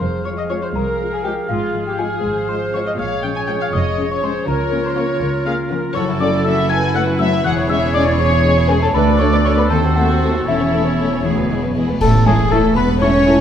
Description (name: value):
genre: cinematic, playful, whimsical film cue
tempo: 80 BPM (dotted quarters)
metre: 6/8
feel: straight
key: F minor, A major from 6.0 s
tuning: A4 = 441 Hz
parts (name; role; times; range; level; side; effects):
- dark studio violin section; melody; 0.0-13.3 s; E4 to Ab5; -25 LUFS; left 3 dB; none
- small celesta; melody; 0.0-13.4 s; E5 to Ab6; -25 LUFS; left 4 dB; none
- bright clarinet; second line; 0.0-13.4 s; B3 to C#5; -25 LUFS; equal; none
- clear oboe; second line; 0.0-11.8 s; G#4 to F5; -28 LUFS; right 1 dB; none
- flute section; second line; 0.0-13.4 s; E4 to Ab5; -26 LUFS; left 1 dB; none
- concert harp; arpeggios; 0.0-13.4 s; F#2 to C6; -25 LUFS; left 6 dB; none
- warm studio cello section; bass; 0.0-13.4 s; C2 to C#4; -21 LUFS; right 2 dB; none
- warm studio double bass section; bass; 0.0-13.4 s; E1 to D#2; -22 LUFS; right 3 dB; none
- dark French horn section; sustained chords; 0.3-13.4 s; Ab3 to F4; -25 LUFS; left 3 dB; none
- warm studio violin section; second line; 0.5-13.4 s; A3 to C#5; -26 LUFS; left 3 dB; none
- warm studio viola section; accompaniment; 0.8-13.3 s; C#4 to D5; -25 LUFS; right 1 dB; none
- cymbal swell, clash cymbals and concert bass drum; percussion; 8.9-13.0 s; none; -25 LUFS; equal; none
room: wet recital hall reverb, RT60 1.4 s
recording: dark, warm production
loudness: -14 LUFS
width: side -9 dB against mid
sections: 0.0-12.0 A section; 12.0-13.4 B section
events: band accent 12.0-12.5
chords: 0.0 Fm; 1.5 Fm/Ab; 3.0 Bbm7; 4.5 Bbm/Db; 6.0 F#m7; 7.5 C#m/E; 8.9 Bm7/D; 9.7 D#dim7; 10.5 A/E; 11.2 E; 12.0 A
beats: | 0.00 0.76 | 1.50 2.25 | 2.99 3.73 | 4.48 5.22 | 5.96 6.70 | 7.45 8.20 | 8.95 9.71 | 10.48 11.24 | 12.01 12.76